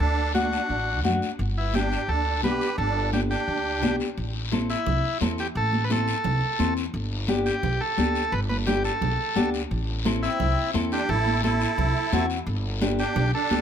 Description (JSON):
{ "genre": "latin, cumbia", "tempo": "174 BPM", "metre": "4/4", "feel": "straight", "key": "G major", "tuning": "A4 = 440 Hz", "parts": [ { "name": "combo organ", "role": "melody", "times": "0.0-13.6 s", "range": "E4 to B4", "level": "-28 LUFS", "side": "equal", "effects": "none" }, { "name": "musette accordion", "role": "second line", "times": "0.0-4.0, 10.2-13.6 s", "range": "B3 to G4", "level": "-31 LUFS", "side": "right 6 dB", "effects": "none" }, { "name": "upright bass", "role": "bass", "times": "0.0-13.6 s", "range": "G1 to F#2", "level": "-27 LUFS", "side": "equal", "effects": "none" }, { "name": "congas", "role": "percussion", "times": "0.0-13.6 s", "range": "none", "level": "-31 LUFS", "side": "right 4 dB", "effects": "none" }, { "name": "guiro", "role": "percussion", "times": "0.0-13.6 s", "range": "none", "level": "-36 LUFS", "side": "left 8 dB", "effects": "none" }, { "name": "nylon-string guitar", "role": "accompaniment", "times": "0.3-13.6 s", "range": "A3 to A4", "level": "-29 LUFS", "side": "left 4 dB", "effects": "none" } ], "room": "light reverb", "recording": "none", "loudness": "-22 LUFS", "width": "side -8 dB against mid", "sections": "0.0-4.2 A section; 4.2-13.6 B section", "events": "none", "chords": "0.0 D; 1.4 G; 4.2 Am; 6.9 Gadd9; 9.7 Am; 12.5 Gadd9" }